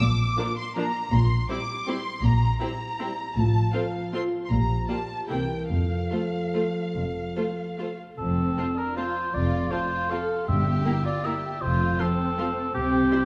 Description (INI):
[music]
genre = classical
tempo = 135-175 BPM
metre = 3/4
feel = rubato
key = F major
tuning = A4 = 440 Hz
[part]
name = dark symphonic violin section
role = melody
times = 0.0-13.2 s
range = F5 to D6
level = -35 LUFS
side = equal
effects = none
[part]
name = warm symphonic cello section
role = bass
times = 0.0-13.1 s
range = F2 to C3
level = -31 LUFS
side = equal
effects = none
[part]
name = warm symphonic double bass section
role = bass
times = 0.0-13.0 s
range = F1 to C2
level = -30 LUFS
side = equal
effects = none
[part]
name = warm symphonic violin section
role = second line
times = 0.4-13.2 s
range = C4 to D5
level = -36 LUFS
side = equal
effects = none
[part]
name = clear symphonic viola section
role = accompaniment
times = 0.4-13.2 s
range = F3 to F4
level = -37 LUFS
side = equal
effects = none
[part]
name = mellow French horn section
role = sustained chords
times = 0.4-8.0 s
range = E3 to Bb4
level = -34 LUFS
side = equal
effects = none
[part]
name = mellow oboe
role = second line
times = 8.2-13.2 s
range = G4 to F5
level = -30 LUFS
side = equal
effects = none
[part]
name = timpani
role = percussion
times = 10.5-11.0 s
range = G2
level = -30 LUFS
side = equal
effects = none
[sound]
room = moderate scoring stage reverb, RT60 2.1 s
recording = small room ambience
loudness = -26 LUFS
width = mono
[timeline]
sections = 0.0-8.2 A section; 8.2-13.2 B section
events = none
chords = 0.0 Bb; 1.1 C7/Bb; 3.4 F/A; 4.5 Gm7/Bb; 5.3 C7; 5.7 F; 10.5 Edim/G; 11.6 F; 12.7 C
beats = | 0.02 0.38 0.77 | 1.13 1.50 1.88 | 2.24 2.61 3.01 | 3.37 3.74 4.14 | 4.51 4.89 5.30 | 5.70 6.12 6.55 | 6.96 7.37 7.80 | 8.19 8.58 8.97 | 9.34 9.71 10.11 | 10.48 10.86 11.25 | 11.62 12.00 12.38 | 12.74 13.12